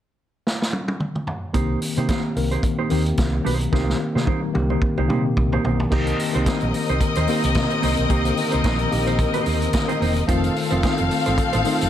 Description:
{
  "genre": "disco",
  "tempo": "110 BPM",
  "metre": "4/4",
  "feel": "swing 56% on 16ths",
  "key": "C dorian",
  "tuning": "A4 = 440 Hz",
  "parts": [
    { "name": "vintage drum kit", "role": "drums", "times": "0.5-11.9 s", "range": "crash cymbal, hi-hat, kick drum, snare drum, toms", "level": "-24 LUFS", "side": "equal", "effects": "none" },
    { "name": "mellow electric guitar", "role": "accompaniment", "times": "1.5-11.8 s", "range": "Bb3 to C5", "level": "-28 LUFS", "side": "right 8 dB", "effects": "none" },
    { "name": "mellow tine electric piano", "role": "accompaniment", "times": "1.5-11.9 s", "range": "D3 to Bb4", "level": "-24 LUFS", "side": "left 2 dB", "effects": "medium stereo tremolo" },
    { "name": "hollow-body short-scale fingered electric bass", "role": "bass", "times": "1.5-11.9 s", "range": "E1 to C3", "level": "-23 LUFS", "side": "equal", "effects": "none" },
    { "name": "rich studio string section", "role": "second line", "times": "5.9-11.9 s", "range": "C4 to F5", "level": "-23 LUFS", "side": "left 4 dB", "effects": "none" }
  ],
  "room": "light reverb, small room ambience",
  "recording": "none",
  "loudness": "-19 LUFS",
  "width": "side -11 dB against mid",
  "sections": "0.0-1.5 A section; 1.5-5.9 B section; 5.9-11.9 C section",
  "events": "drum fill 0.5-1.5, 3.7-5.9",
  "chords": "0.0 N.C.; 1.5 Cm7; 10.3 F7"
}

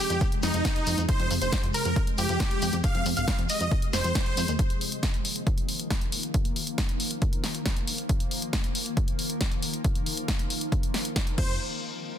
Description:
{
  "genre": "uplifting trance",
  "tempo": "137 BPM",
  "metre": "4/4",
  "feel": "straight",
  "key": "unclear",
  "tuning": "A4 = 439 Hz",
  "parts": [
    { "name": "supersaw chords", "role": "melody", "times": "0.0-4.5, 11.4-11.5 s", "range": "Eb4 to F5", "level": "-30 LUFS", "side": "right 1 dB", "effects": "sidechain pumping, digital delay" },
    { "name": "shimmering ambient pad", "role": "sustained chords", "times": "0.0-11.6 s", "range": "C3 to Bb3", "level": "-34 LUFS", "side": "left 1 dB", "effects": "chorus, built-in reverb, sidechain pumping" },
    { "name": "shekere", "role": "percussion", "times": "0.0-4.6 s", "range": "none", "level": "-36 LUFS", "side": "left 4 dB", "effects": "none" },
    { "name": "downlifter", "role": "sound effects", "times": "0.0-1.1 s", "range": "none", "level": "barely audible", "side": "none", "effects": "none" },
    { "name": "plucky analog bass", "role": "bass", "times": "0.1-4.6, 11.4-11.6 s", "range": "F1 to F2", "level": "-30 LUFS", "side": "equal", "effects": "sidechain pumping" },
    { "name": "punchy analog drum machine", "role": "drums", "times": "0.1-11.5 s", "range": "crash cymbal, hi-hat, snare drum", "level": "-31 LUFS", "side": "left 1 dB", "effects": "none" },
    { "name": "electronic kick drum", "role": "drums", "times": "0.2-11.5 s", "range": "none", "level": "-27 LUFS", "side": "equal", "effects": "none" }
  ],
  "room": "little or no reverb",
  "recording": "dense, heavily limited modern master",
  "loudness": "-24 LUFS",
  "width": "side -10 dB against mid",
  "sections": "0.0-11.6 A section",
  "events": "none",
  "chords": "0.0 Fm; 4.6 Ebsus2; 11.4 Fm; 11.6 N.C."
}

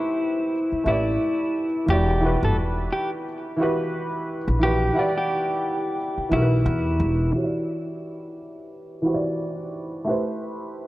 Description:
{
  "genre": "lo-fi hip hop",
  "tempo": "88 BPM",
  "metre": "4/4",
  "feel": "swing 59% on 16ths",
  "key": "E minor",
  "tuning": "A4 = 435 Hz",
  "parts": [
    { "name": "clean electric guitar", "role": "melody", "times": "0.0-7.3 s", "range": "E4 to A4", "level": "-25 LUFS", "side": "equal", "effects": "low-pass filter, tape echo" },
    { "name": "warm upright piano", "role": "accompaniment", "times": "0.0-10.9 s", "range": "E3 to F#5", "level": "-26 LUFS", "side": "right 1 dB", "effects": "cassette tape, low-pass filter" },
    { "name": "upright bass", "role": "bass", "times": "0.7-7.3 s", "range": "E1 to E2", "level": "-22 LUFS", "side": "equal", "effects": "none" }
  ],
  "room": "light reverb, studio reverb",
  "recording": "dark, warm production",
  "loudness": "-21 LUFS",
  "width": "side -17 dB against mid",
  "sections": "0.0-7.3 A section; 7.3-10.9 B section",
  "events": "none",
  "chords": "0.0 Am9; 1.9 Em9; 10.1 Am9"
}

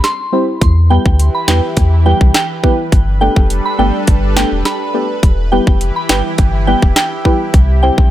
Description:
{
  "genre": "dancehall",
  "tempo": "104 BPM",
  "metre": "4/4",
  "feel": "straight",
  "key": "E minor",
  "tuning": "A4 = 440 Hz",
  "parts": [
    { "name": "soft synth bell", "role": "melody", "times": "0.0-7.9 s", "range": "G5 to C6", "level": "-19 LUFS", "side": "right 2 dB", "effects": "chorus, digital delay" },
    { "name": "island pop drum kit", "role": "drums", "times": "0.0-8.1 s", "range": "handclaps, hi-hat, kick drum, rim click, snare drum", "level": "-12 LUFS", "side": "equal", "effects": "overdrive" },
    { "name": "deep mellow chord stab", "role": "accompaniment", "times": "0.3-8.0 s", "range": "G3 to C5", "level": "-18 LUFS", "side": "equal", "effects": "chorus" },
    { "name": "lush unison pad", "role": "sustained chords", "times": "0.9-8.1 s", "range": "C3 to B4", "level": "-22 LUFS", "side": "right 1 dB", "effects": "chorus, phaser, sidechain pumping" },
    { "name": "warm sub bass", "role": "bass", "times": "0.6-8.1 s", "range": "E1 to E2", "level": "-13 LUFS", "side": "equal", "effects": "none" }
  ],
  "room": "little or no reverb",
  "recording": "none",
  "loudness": "-10 LUFS",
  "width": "side -13 dB against mid",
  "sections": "0.0-8.1 A section",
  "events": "none",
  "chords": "0.0 C; 0.6 Em; 2.9 Gadd9; 5.2 Em; 7.5 C"
}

